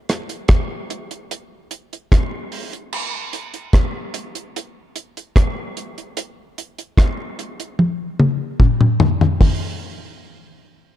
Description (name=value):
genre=reggae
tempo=74 BPM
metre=4/4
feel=straight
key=none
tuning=none
part: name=deep reggae drum kit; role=drums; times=0.1-9.6 s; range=crash cymbal, hi-hat, kick drum, rim click, toms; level=-17 LUFS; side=equal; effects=none
room=light reverb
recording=dark, warm production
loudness=-17 LUFS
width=side -12 dB against mid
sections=0.0-2.9 A section; 2.9-9.4 B section; 9.4-11.0 C section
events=drum fill 7.8-9.4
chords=none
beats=0.50 1.31 2.12 | 2.93 3.74 4.55 5.36 | 6.17 6.98 7.79 8.60 | 9.41